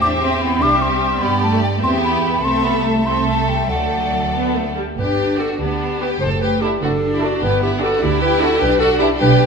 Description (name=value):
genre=quick classical-period movement for symphony orchestra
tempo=99 BPM (dotted quarters)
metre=6/8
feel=rubato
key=G major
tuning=A4 = 444 Hz
part: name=dark chamber violin section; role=melody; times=0.0-9.2 s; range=D5 to D6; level=-28 LUFS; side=left 2 dB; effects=none
part: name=mellow hollow silver concert flute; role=second line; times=0.0-4.8 s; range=F#5 to D6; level=-20 LUFS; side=left 1 dB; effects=none
part: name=rich chamber violin section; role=second line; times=0.0-9.5 s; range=D4 to A4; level=-22 LUFS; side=left 3 dB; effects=none
part: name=rich chamber viola section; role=accompaniment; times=0.0-9.2 s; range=G3 to A4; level=-24 LUFS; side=right 2 dB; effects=none
part: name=rich chamber cello section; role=bass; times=0.0-9.5 s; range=F#3 to E4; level=-23 LUFS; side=right 2 dB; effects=none
part: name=rich studio double bass section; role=bass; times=0.0-9.5 s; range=F#1 to G2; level=-22 LUFS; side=right 3 dB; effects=none
part: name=warm clarinet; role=second line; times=5.0-9.5 s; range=F#4 to C5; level=-19 LUFS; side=left 2 dB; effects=none
room=moderate scoring stage reverb, RT60 1.9 s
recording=minimal, uncompressed stereo recording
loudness=-15 LUFS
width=side -5 dB against mid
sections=0.0-5.0 A section; 5.0-9.5 B section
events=none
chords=0.0 C/E; 0.6 C; 1.2 G; 1.8 Em; 2.4 Am/C; 3.7 D; 5.0 G; 6.2 D/F#; 7.4 G; 8.6 G/B